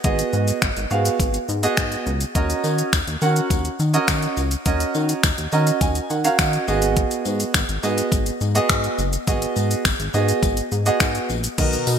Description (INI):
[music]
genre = dance-pop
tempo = 104 BPM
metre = 4/4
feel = straight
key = unclear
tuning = A4 = 437 Hz
[part]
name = warm grand piano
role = accompaniment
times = 0.0-12.0 s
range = Cb4 to Bb5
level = -22 LUFS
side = right 4 dB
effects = lush chorus, sidechain pumping
[part]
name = chorused synth bass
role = bass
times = 0.0-12.0 s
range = Gb1 to Eb3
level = -23 LUFS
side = left 1 dB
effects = sidechain pumping
[part]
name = pop drum kit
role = drums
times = 0.0-12.0 s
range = crash cymbal, finger snaps, hi-hat, kick drum, shaker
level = -22 LUFS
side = left 1 dB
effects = overdrive, gated reverb
[part]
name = tambourine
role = percussion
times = 2.6-12.0 s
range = none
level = -35 LUFS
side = left 17 dB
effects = none
[part]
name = chorused pulse-width pad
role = sustained chords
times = 11.6-12.0 s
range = B2 to A#4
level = -25 LUFS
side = left 4 dB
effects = sidechain pumping
[part]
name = analog pluck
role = arpeggios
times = 11.6-11.7 s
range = D#3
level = -31 LUFS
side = left 2 dB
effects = chorus, sidechain pumping
[sound]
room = moderate lush hall reverb, RT60 3.0 s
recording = bright 1980s-style digital production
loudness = -18 LUFS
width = side -8 dB against mid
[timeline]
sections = 0.0-11.6 A section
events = grand piano fill 5.2-7.0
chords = 0.0 Abm7; 2.4 Ebm7; 6.7 Abm7